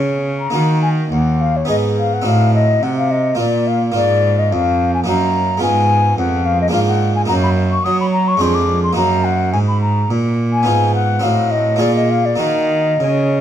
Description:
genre	classical, baroque-style sonata movement with continuo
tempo	106 BPM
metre	3/4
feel	rubato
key	Eb minor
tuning	A4 = 440 Hz
part	harpsichord	accompaniment	0.0-13.4 s	Eb2 to Ab4	-19 LUFS	right 1 dB	none
part	rich cello	bass	0.0-13.4 s	Eb2 to Gb3	-17 LUFS	right 2 dB	none
part	baroque flute	melody	0.4-13.4 s	Db5 to Eb6	-18 LUFS	left 4 dB	none
room	moderate stone room reverb, RT60 1.3 s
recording	dark, warm production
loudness	-13 LUFS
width	side -10 dB against mid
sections	0.5-13.4 A section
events	none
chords	0.0 Ebm; 1.7 Abm; 2.3 Adim7; 3.4 Bb; 4.0 Bb5/Ab; 5.1 Ebm/Gb; 5.6 Fdim/Ab; 6.7 Bb7/Ab; 7.3 Ebm/Gb; 8.4 Ddim/F; 9.0 Ebm/Gb; 10.7 Fm7b5/Ab; 11.2 Adim7; 11.8 Bb5; 12.4 Ebm

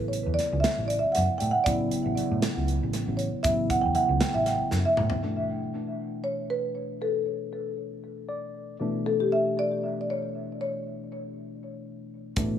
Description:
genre	progressive instrumental, band music in an uneven meter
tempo	235 BPM (eighths)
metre	7/8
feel	straight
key	A major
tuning	A4 = 438 Hz
part	marimba with soft mallets	melody	0.0-12.1 s	G4 to G5	-27 LUFS	equal	analog delay
part	tine electric piano	accompaniment	0.0-12.6 s	B2 to D5	-32 LUFS	left 2 dB	analog delay
part	hollow-body short-scale picked electric bass	bass	0.0-5.1, 12.4-12.6 s	A1 to A2	-29 LUFS	right 1 dB	none
part	modern studio drum kit	drums	0.1-5.2, 12.4-12.5 s	hi-hat, kick drum, snare drum, toms	-31 LUFS	equal	analog delay
part	tube shaker	percussion	0.4-5.0, 12.4-12.6 s	none	-46 LUFS	left 5 dB	none
room	light reverb, studio reverb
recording	echo-heavy mix, small room ambience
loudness	-25 LUFS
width	side -9 dB against mid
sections	0.0-5.2 A section; 5.2-12.6 B section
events	marimba solo 0.0-5.2; drum fill 4.7-5.2; tine electric piano fill 8.0-8.8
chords	0.0 A; 5.2 Asus4

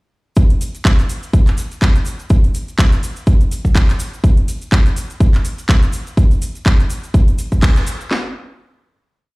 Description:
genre	house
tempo	124 BPM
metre	4/4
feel	swing 56% on 16ths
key	none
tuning	none
part	house drum kit	drums	0.4-8.2 s	handclaps, kick drum, snare drum	-12 LUFS	equal	none
part	house drum kit	drums	0.4-8.1 s	cabasa, handclaps, hi-hat	-24 LUFS	equal	sidechain pumping on hats, sidechain pumping on perc
part	maracas	percussion	0.4-8.1 s	none	-38 LUFS	left 1 dB	sidechain pumping on perc
room	digital ambience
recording	played on a big sound system in a bare room, large studio reverb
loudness	-13 LUFS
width	side -25 dB against mid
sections	0.4-8.1 drop; 8.1-9.4 final hit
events	drop 0.4-8.1; band accent 7.6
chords	none

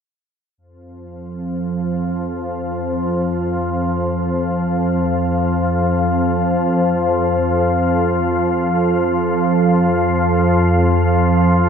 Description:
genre	ambient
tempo	free time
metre	none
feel	none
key	unclear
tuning	A4 = 440 Hz
part	organ-like drone	solo	1.1-11.7 s	F2 to F3	-15 LUFS	equal	ensemble chorus, built-in reverb, ping-pong delay
room	wet cathedral reverb, RT60 6.8 s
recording	in a vast, echoing space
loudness	-15 LUFS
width	side -7 dB against mid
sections	0.6-11.7 A section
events	none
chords	none

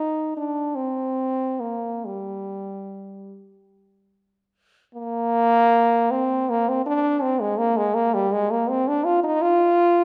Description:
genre	classical, free, expressive piece for unaccompanied French horn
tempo	31-55 BPM (dotted quarters)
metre	6/8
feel	rubato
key	unclear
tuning	A4 = 440 Hz
part	mellow French horn	solo	0.0-10.0 s	G3 to F4	-22 LUFS	equal	none
room	wet recital hall reverb, RT60 1.4 s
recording	none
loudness	-22 LUFS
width	mono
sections	0.0-4.9 A section; 4.9-10.0 B section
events	none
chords	none

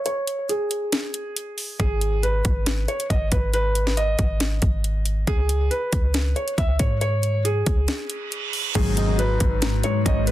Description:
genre	hip hop, trap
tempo	138 BPM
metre	4/4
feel	half-time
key	G# minor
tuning	A4 = 440 Hz
part	felt-muted upright piano	melody	0.1-10.3 s	G#4 to E5	-26 LUFS	right 1 dB	low-pass filter, ping-pong delay
part	trap drum kit	drums	0.1-10.3 s	crash cymbal, hi-hat, kick drum, snare drum	-24 LUFS	equal	none
part	warm 808-style bass	bass	1.8-10.3 s	G#1 to G#2	-23 LUFS	equal	none
part	reverse cymbal	sound effects	8.1-8.8 s	none	-28 LUFS	right 9 dB	none
part	dark grand piano	accompaniment	8.8-10.3 s	G#2 to G#3	-24 LUFS	left 1 dB	none
part	deep dark ambient pad	sustained chords	9.6-10.3 s	G#3 to B4	-30 LUFS	left 2 dB	chorus, built-in reverb
part	polysynth with added fifth	stabs	8.8-9.2 s	B2 to F#3	-29 LUFS	left 3 dB	chorus, ping-pong delay
part	soft octave-layered synth lead	second line	9.0-10.3 s	B4 to D#5	-33 LUFS	right 6 dB	chorus, ping-pong delay
room	little or no reverb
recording	dense, heavily limited modern master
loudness	-20 LUFS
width	side -14 dB against mid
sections	0.0-8.8 A section; 8.8-10.3 B section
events	break 0.0-1.8, 7.9-8.8; filter sweep on felt piano 0.0-1.8; reverse cymbal 8.1-8.8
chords	0.0 N.C.; 1.8 G#m; 5.3 C#5; 8.8 G#m7

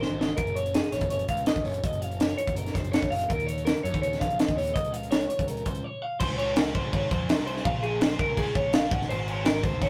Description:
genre	math rock and midwest emo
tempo	165 BPM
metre	4/4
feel	straight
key	Db major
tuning	A4 = 439 Hz
part	twelve-string electric guitar	arpeggios	0.0-9.9 s	Ab4 to Gb5	-32 LUFS	equal	none
part	fuzz picked electric bass	bass	0.0-9.9 s	Gb1 to Gb2	-36 LUFS	equal	overdrive
part	crisp fusion drum kit	drums	0.0-9.9 s	crash cymbal, hi-hat, kick drum, snare drum	-29 LUFS	equal	none
room	moderate studio reverb, RT60 0.5 s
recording	rough rehearsal-room recording, warm saturation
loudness	-27 LUFS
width	mono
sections	0.0-6.2 A section; 6.2-9.9 B section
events	drum fill 0.0-0.4; break 5.8-6.2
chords	0.4 Gb6; 3.3 Eb7sus2; 4.8 Db69; 6.2 Dbmaj7; 7.7 Bbm7; 8.9 Ab7

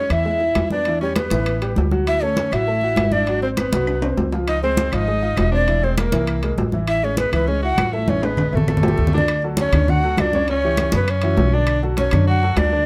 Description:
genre	Afro-Cuban jazz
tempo	200 BPM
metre	4/4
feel	straight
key	A major, D major from 9.3 s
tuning	A4 = 442 Hz
part	breathy mellow jazz flute	melody	0.0-12.9 s	A4 to F#5	-24 LUFS	equal	plate reverb
part	raspy alto saxophone	second line	0.0-12.9 s	A3 to F#4	-30 LUFS	equal	none
part	warm baby grand piano	accompaniment	0.0-12.8 s	C#3 to F#5	-28 LUFS	equal	none
part	upright bass	bass	0.1-12.9 s	E1 to F#2	-24 LUFS	equal	none
part	claves	percussion	0.1-12.7 s	none	-37 LUFS	equal	none
part	congas	percussion	0.1-12.7 s	none	-26 LUFS	equal	none
part	timbales	percussion	0.1-12.7 s	none	-30 LUFS	equal	none
room	light reverb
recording	dark, warm production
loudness	-19 LUFS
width	mono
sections	0.0-9.3 A section; 9.3-12.9 B section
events	drum fill 3.9-4.5, 8.1-9.3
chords	0.0 E6; 0.9 Emadd11; 1.5 Asus2; 2.1 Dmaj9; 3.3 D7#9; 4.5 C#maj9; 5.7 Eaug; 6.9 Amaj9; 8.7 A5; 9.3 Dmaj7; 10.5 C#dim; 11.1 F#5; 11.7 Bm9

